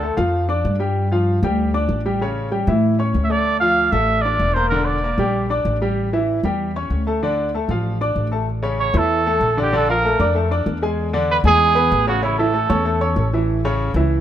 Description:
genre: latin, salsa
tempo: 192 BPM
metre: 4/4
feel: straight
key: unclear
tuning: A4 = 439 Hz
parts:
  - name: warm trumpet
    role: melody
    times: 0.0-0.2, 3.2-5.5, 8.8-13.3 s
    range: E4 to F5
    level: -19 LUFS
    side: right 3 dB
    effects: none
  - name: bright concert grand piano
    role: accompaniment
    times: 0.0-14.2 s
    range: C#3 to D6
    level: -21 LUFS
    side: left 1 dB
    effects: none
  - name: upright bass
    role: bass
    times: 0.0-14.2 s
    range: E1 to A2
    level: -21 LUFS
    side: left 1 dB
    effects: none
room: light reverb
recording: minimal, uncompressed stereo recording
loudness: -16 LUFS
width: side -10 dB against mid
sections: 0.0-8.5 A section; 8.5-14.2 B section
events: none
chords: 0.0 F69; 1.0 G5; 2.2 A7; 3.5 Dm; 4.7 Em7b5; 6.0 A7; 7.2 Dm; 8.5 A; 9.7 Bbmaj7; 11.0 E7; 12.2 A

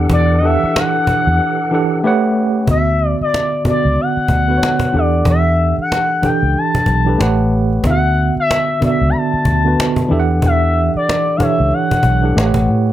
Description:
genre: R&B, neo-soul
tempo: 93 BPM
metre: 4/4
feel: swing 58% on 16ths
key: D major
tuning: A4 = 442 Hz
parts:
  - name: mellow tine electric piano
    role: accompaniment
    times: 0.0-12.9 s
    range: D3 to G5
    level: -17 LUFS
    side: right 3 dB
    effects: auto-pan
  - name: tonewheel organ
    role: sustained chords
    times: 0.0-2.7 s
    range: E3 to F#5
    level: -26 LUFS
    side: left 1 dB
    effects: slow rotary speaker, overdrive, chorus vibrato
  - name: vintage muted fingered electric bass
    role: bass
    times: 0.0-12.9 s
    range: A1 to A2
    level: -16 LUFS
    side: equal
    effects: none
  - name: expressive portamento lead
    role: melody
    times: 0.1-12.7 s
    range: D5 to B5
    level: -17 LUFS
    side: left 2 dB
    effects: chorus
  - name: cajon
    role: drums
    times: 0.1-12.9 s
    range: none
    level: -20 LUFS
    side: equal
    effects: none
room: light reverb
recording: none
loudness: -12 LUFS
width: side -13 dB against mid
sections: 0.0-2.7 A section; 2.7-12.9 B section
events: drums muted 1.4-2.7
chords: 0.0 Em11; 2.0 A13; 2.7 D69; 4.9 Em11; 7.2 A13; 7.8 D69; 10.1 Em11; 12.4 A13

